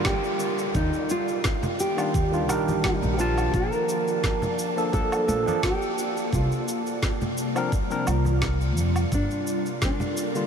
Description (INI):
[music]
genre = sunset chillout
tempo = 86 BPM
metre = 4/4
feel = swing 54% on 16ths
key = unclear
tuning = A4 = 439 Hz
[part]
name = nylon-string guitar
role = melody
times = 0.0-10.5 s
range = D4 to Bb4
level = -28 LUFS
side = right 1 dB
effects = tape echo
[part]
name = barky tine electric piano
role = accompaniment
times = 0.0-10.5 s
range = D3 to A5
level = -30 LUFS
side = moving between left 3 dB and right 4 dB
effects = overdrive, auto-pan, diffuse ambient delay
[part]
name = ethereal airy pad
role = sustained chords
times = 0.0-10.5 s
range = C3 to A5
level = -30 LUFS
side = right 1 dB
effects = ensemble chorus, built-in reverb
[part]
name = electronic snare drum, shaker and woodblock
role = drums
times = 0.0-10.5 s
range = none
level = -32 LUFS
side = right 1 dB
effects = none
[part]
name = downlifter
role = sound effects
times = 0.0-3.5 s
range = none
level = -39 LUFS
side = equal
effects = none
[part]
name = electronic kick drum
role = drums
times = 0.1-10.0 s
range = none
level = -27 LUFS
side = equal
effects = none
[part]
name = upright bass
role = bass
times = 0.7-9.3 s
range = G1 to F2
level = -26 LUFS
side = equal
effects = none
[part]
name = congas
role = percussion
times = 1.6-10.1 s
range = none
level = -35 LUFS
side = left 1 dB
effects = none
[sound]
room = moderate huge ambient reverb, RT60 7.4 s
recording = dreamy mix soaked in reverb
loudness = -22 LUFS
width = side -7 dB against mid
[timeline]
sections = 0.0-10.5 A section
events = none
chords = 0.0 Gm7; 0.7 Ebmaj9; 3.2 Bbmaj7; 6.3 C9sus4; 9.1 Gm7